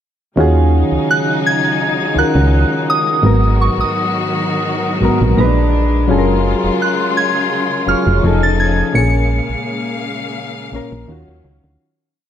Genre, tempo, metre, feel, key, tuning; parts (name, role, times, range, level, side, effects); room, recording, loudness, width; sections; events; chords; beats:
R&B; 84 BPM; 4/4; swing 54% on 16ths; Eb minor; A4 = 441 Hz
soft electric-piano-like synth keys; accompaniment; 0.4-11.8 s; Ab2 to Bb5; -17 LUFS; left 1 dB; chorus
muted studio string section; sustained chords; 0.4-11.8 s; Db3 to F5; -21 LUFS; left 1 dB
solid FM bass; bass; 0.4-11.8 s; F1 to Eb2; -14 LUFS; right 1 dB
soft synth bell; melody; 1.1-10.3 s; Db6 to Db7; -18 LUFS; right 1 dB; chorus, digital delay
light reverb; -12 LUFS; side -10 dB against mid
0.4-11.8 chorus
synth keys fill 5.0-6.1; fade-out 8.9-11.8
0.4 Ebm11; 3.2 Abm9; 5.4 Bb7b9; 6.1 Gbmaj9/F; 8.2 F7alt; 8.9 Bbm7; 11.1 Ebm9
| 0.37 1.09 1.80 2.52 | 3.23 3.94 4.66 5.37 | 6.09 6.80 7.51 8.23 | 8.94 9.66 10.37 11.09